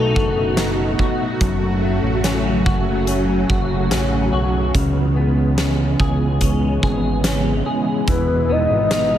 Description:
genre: dream pop.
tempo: 72 BPM.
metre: 4/4.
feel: straight.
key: unclear.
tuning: A4 = 441 Hz.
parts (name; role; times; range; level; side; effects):
soft octave-layered synth lead; melody; 0.0-1.0, 8.1-9.2 s; A4 to D#5; -20 LUFS; left 3 dB; chorus, tremolo.
string machine, cellos; sustained chords; 0.0-9.2 s; B2 to F#4; -21 LUFS; right 1 dB; ensemble chorus.
clean electric guitar; arpeggios; 0.0-9.2 s; F#2 to G#4; -22 LUFS; left 1 dB; ensemble chorus, tape echo.
fat analog bass; bass; 0.0-9.2 s; E1 to C#2; -22 LUFS; right 1 dB; none.
huge arena drum kit; drums; 0.2-9.1 s; hi-hat, kick drum, snare drum; -23 LUFS; equal; none.
room: light reverb, small room ambience.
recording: none.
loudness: -16 LUFS.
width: side -11 dB against mid.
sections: 0.0-9.2 A section.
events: none.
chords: 0.0 B7; 1.4 F#m; 4.7 C#m7; 8.1 Emaj7.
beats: 0.58 | 1.41 2.25 3.08 3.91 | 4.75 5.58 6.41 7.25 | 8.08 8.91.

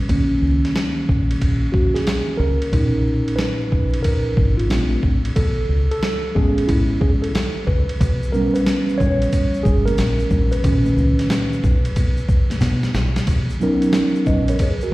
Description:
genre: hip hop, jazz-hop.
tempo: 91 BPM.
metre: 4/4.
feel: swing 66% on 16ths.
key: B major.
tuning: A4 = 440 Hz.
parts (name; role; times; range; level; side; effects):
mellow tine electric piano; accompaniment; 0.0-14.9 s; A#2 to D#5; -20 LUFS; right 1 dB; slow stereo tremolo.
deep dub fingered electric bass; bass; 0.1-14.9 s; G1 to B2; -20 LUFS; equal; none.
dusty soul sampler-style drum kit; drums; 0.1-14.8 s; hi-hat, kick drum, ride cymbal, snare drum; -21 LUFS; equal; none.
tube shaker and congas; percussion; 8.0-14.9 s; none; -31 LUFS; left 1 dB; none.
room: light reverb.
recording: live gig heard through the venue's PA, recital hall reverb, vinyl crackle.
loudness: -16 LUFS.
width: side -18 dB against mid.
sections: 0.0-2.7 A section; 2.7-13.3 A section; 13.3-14.9 B section.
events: tine electric piano solo 0.0-2.7, 2.7-13.3; drum fill 12.6-13.3.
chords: 0.1 Bmaj9 (rootless); 2.7 Bmaj7; 4.7 A#maj7; 5.4 Amaj7; 8.0 Gdim; 10.6 Bmaj9; 13.3 Bmaj7.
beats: | 0.09 0.75 1.41 2.07 | 2.73 3.39 4.04 4.71 | 5.36 6.02 6.68 7.34 | 8.00 8.66 9.32 9.98 | 10.64 11.30 11.96 12.62 | 13.28 13.94 14.60.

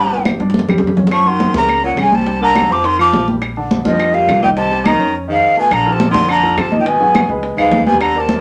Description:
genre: Afro-Cuban jazz.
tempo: 209 BPM.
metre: 4/4.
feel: straight.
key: unclear.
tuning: A4 = 440 Hz.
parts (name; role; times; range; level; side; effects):
breathy jazz flute; melody; 0.0-8.4 s; Eb5 to D6; -16 LUFS; equal; none.
clear baritone saxophone; second line; 0.0-8.4 s; G2 to F3; -23 LUFS; equal; none.
warm baby grand piano; accompaniment; 0.0-8.4 s; D3 to G5; -24 LUFS; equal; none.
upright bass; bass; 0.0-8.4 s; G1 to Ab2; -24 LUFS; equal; none.
bongos; percussion; 0.1-8.4 s; none; -26 LUFS; equal; none.
congas; percussion; 0.1-8.4 s; none; -21 LUFS; equal; none.
claves; percussion; 0.3-8.2 s; none; -28 LUFS; equal; none.
room: wet studio reverb, RT60 0.5 s.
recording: none.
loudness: -14 LUFS.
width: mono.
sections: 0.0-5.7 A section; 5.7-8.4 B section.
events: drum fill 0.3-1.1.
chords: 0.0 G; 1.1 Gb6; 2.3 Csus2; 2.8 F5; 3.4 Bb69; 4.6 Cm7; 5.1 F7alt; 5.7 Bbmaj7; 6.9 Abm7; 7.4 Db9.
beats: 0.26 0.54 0.83 | 1.12 1.41 1.69 1.98 | 2.27 2.56 2.84 3.13 | 3.42 3.71 3.99 4.28 | 4.57 4.86 5.14 5.43 | 5.72 6.00 6.29 6.58 | 6.86 7.15 7.44 7.72 | 8.01 8.30.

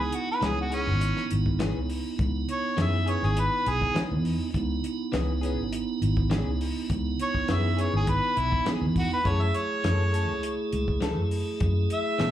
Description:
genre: straight-eighth soul blues.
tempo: 102 BPM.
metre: 4/4.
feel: straight.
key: C# minor.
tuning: A4 = 440 Hz.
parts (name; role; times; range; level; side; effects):
mellow harmonica; melody; 0.0-12.3 s; C#4 to E5; -28 LUFS; equal; slapback echo.
tonewheel organ; accompaniment; 0.0-12.3 s; A3 to G#4; -31 LUFS; right 5 dB; slow rotary speaker, overdrive.
vintage muted fingered electric bass; bass; 0.0-12.3 s; G#1 to B2; -27 LUFS; equal; none.
warm soul drum kit; drums; 0.1-12.3 s; hi-hat, kick drum, snare drum; -32 LUFS; equal; none.
direct-recorded clean electric guitar; stabs; 0.4-12.3 s; E3 to A4; -36 LUFS; left 7 dB; lush chorus, slapback echo.
room: studio ambience.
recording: live gig heard through the venue's PA, club ambience.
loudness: -24 LUFS.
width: side -12 dB against mid.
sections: 0.0-12.3 A section.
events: none.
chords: 0.0 C#m7; 9.3 F#m7.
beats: 0.42 1.01 1.60 | 2.19 2.78 3.37 3.96 | 4.54 5.13 5.72 6.31 | 6.90 7.49 8.08 8.67 | 9.26 9.84 10.43 11.02 | 11.61 12.20.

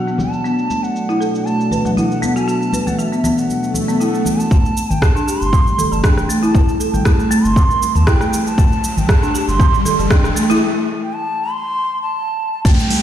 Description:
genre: afro house.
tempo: 118 BPM.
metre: 4/4.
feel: swing 54% on 16ths.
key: A dorian.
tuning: A4 = 439 Hz.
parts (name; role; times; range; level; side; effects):
reedy bansuri; melody; 0.0-13.0 s; E5 to C6; -22 LUFS; right 2 dB; ping-pong delay.
warm analog pad; sustained chords; 0.0-13.0 s; B2 to D4; -25 LUFS; right 2 dB; chorus, sidechain pumping.
folk marimba with medium hard mallets; arpeggios; 0.0-12.8 s; E3 to B4; -19 LUFS; left 1 dB; sidechain pumping, low-pass filter, ping-pong delay.
afro-pop drum kit; drums; 0.1-13.0 s; crash cymbal, hi-hat, rim click, shaker, toms; -23 LUFS; equal; studio reverb.
congas; percussion; 0.2-4.4, 12.7-13.0 s; none; -23 LUFS; left 2 dB; none.
swell, riser and downlifter; sound effects; 3.6-13.0 s; none; -25 LUFS; right 1 dB; none.
round analog bass; bass; 4.5-12.8 s; E1 to E2; -19 LUFS; equal; sidechain pumping.
electronic kick drum; drums; 4.5-12.8 s; none; -14 LUFS; equal; overdrive, studio reverb.
room: light reverb.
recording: played on a big sound system in a bare room, stone room reverb, low-pass filter.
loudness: -14 LUFS.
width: side -10 dB against mid.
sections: 0.0-4.5 A section; 4.5-12.6 B section.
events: swell 3.6-4.5; build-up 4.5-12.6; riser 4.5-10.6; filter sweep on marimba 4.5-12.6; break 10.6-12.6.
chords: 0.0 Bm7; 4.5 Am7.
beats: | 0.45 0.95 1.46 1.97 | 2.48 2.99 3.50 4.00 | 4.51 5.02 5.53 6.04 | 6.55 7.06 7.56 8.07 | 8.58 9.09 9.60 10.11 | 10.62 11.12 11.63 12.14 | 12.65.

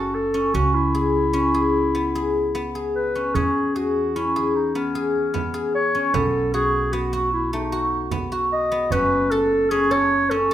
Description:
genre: contemporary instrumental, chamber music in an uneven meter.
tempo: 151 BPM.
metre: 7/4.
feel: straight.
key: C# minor.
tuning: A4 = 441 Hz.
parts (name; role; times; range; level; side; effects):
dark clarinet; melody; 0.0-10.5 s; C#4 to D#5; -23 LUFS; left 1 dB; none.
guzheng; arpeggios; 0.0-10.5 s; A3 to A4; -22 LUFS; left 1 dB; none.
upright bass; bass; 0.0-10.5 s; F#1 to E2; -29 LUFS; right 2 dB; none.
frame drum; percussion; 3.3-10.5 s; none; -31 LUFS; right 7 dB; none.
room: moderate recital hall reverb, RT60 1.5 s.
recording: minimal, uncompressed stereo recording.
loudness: -19 LUFS.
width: side -12 dB against mid.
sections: 0.0-10.5 A section.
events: none.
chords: 0.0 F#m; 0.5 C#m7; 3.4 E6; 6.1 B7; 8.9 F#m.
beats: 0.14 | 0.54 0.94 1.34 1.74 2.14 2.54 2.95 | 3.35 3.75 4.15 4.55 4.95 5.34 5.75 | 6.14 6.54 6.93 7.33 7.72 8.12 8.52 | 8.91 9.31 9.71 10.10 10.49.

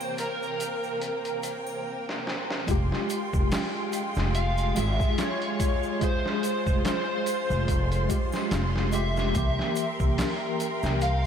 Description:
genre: trip hop.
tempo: 72 BPM.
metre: 4/4.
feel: swing 56% on 16ths.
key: F harmonic minor.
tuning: A4 = 440 Hz.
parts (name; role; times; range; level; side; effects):
overdriven slide guitar; melody; 0.0-11.3 s; Bb4 to F5; -32 LUFS; equal; ensemble chorus, tape echo.
tine electric piano; accompaniment; 0.0-11.3 s; C3 to Ab4; -32 LUFS; left 1 dB; medium stereo tremolo, tape echo.
warm symphonic violin section; sustained chords; 0.0-11.3 s; Ab3 to C6; -33 LUFS; right 1 dB; vintage 12-bit sampler grit.
triangle and egg shaker; percussion; 0.0-11.2 s; none; -45 LUFS; right 3 dB; none.
trip hop sampler-style drum kit; drums; 0.2-11.2 s; hi-hat, kick drum, snare drum; -30 LUFS; equal; high-pass filter on hats, high-pass filter on snare, high-pass filter on kick, high-pass filter on room.
upright bass; bass; 2.7-11.3 s; F1 to C2; -27 LUFS; equal; none.
room: moderate lush hall reverb, RT60 3.0 s.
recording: dreamy mix soaked in reverb.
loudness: -24 LUFS.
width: side -8 dB against mid.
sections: 0.0-2.7 A section; 2.7-11.3 B section.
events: drum fill 2.1-2.7.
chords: 0.0 C7; 2.7 Fmadd9; 9.3 C7.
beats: 0.18 1.02 1.85 | 2.68 3.52 4.35 5.18 | 6.02 6.85 7.68 8.52 | 9.35 10.18 11.02.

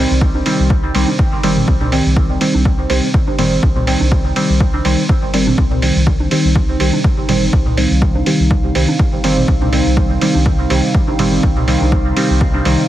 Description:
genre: dub techno.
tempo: 123 BPM.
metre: 4/4.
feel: swing 55% on 16ths.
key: C minor.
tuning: A4 = 440 Hz.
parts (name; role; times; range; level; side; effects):
warbly tape-like pad; sustained chords; 0.4-12.9 s; C3 to F5; -24 LUFS; left 1 dB; chorus, built-in reverb, sidechain pumping.
deep mellow chord stab; stabs; 0.0-12.8 s; Eb3 to C4; -16 LUFS; right 1 dB; chorus, phaser, sidechain pumping, dub echo.
round analog bass; bass; 0.0-12.8 s; G1 to C2; -18 LUFS; equal; sidechain pumping.
electronic kick drum; drums; 0.2-12.5 s; none; -15 LUFS; equal; none.
electronic congas and toms; percussion; 0.3-12.6 s; none; -24 LUFS; right 2 dB; sidechain pumping on perc, sidechain pumping on toms, dub echo.
electronic hi-hat; drums; 0.5-12.8 s; none; -23 LUFS; right 2 dB; overdrive.
room: light reverb.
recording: heavily compressed radio sound, vinyl crackle.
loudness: -12 LUFS.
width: side -13 dB against mid.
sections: 0.0-12.9 A section.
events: none.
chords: 0.0 Cm.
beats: 0.21 0.70 1.19 | 1.68 2.17 2.65 3.14 | 3.63 4.12 4.61 5.09 | 5.58 6.07 6.56 7.04 | 7.53 8.02 8.51 8.99 | 9.48 9.97 10.46 10.95 | 11.43 11.92 12.41.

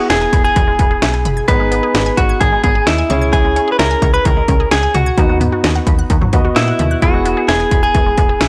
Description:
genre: synth-pop.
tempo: 130 BPM.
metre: 4/4.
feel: straight.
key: unclear.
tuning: A4 = 440 Hz.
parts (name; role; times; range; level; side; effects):
direct-recorded clean electric guitar; melody; 0.0-8.5 s; E4 to B4; -18 LUFS; equal; none.
clear concert grand piano; accompaniment; 0.0-8.5 s; B3 to D#5; -23 LUFS; equal; none.
resonant blip pluck; arpeggios; 0.0-8.5 s; D#3 to G#6; -26 LUFS; equal; phaser, tape echo.
slap-like FM bass; bass; 0.1-8.5 s; E1 to A#2; -21 LUFS; equal; tube saturation.
house drum kit; drums; 0.1-8.5 s; hi-hat, kick drum, snare drum, toms; -18 LUFS; equal; none.
room: light reverb.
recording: dry, gritty hardware recording.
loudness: -14 LUFS.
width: mono.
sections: 0.0-8.5 A section.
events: none.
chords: 0.0 E; 1.5 G#m; 3.1 C#m; 5.2 B/D#; 7.0 E.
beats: 0.10 0.56 1.02 | 1.48 1.95 2.41 2.87 | 3.33 3.79 4.25 4.71 | 5.18 5.64 6.10 6.56 | 7.02 7.48 7.95 8.41.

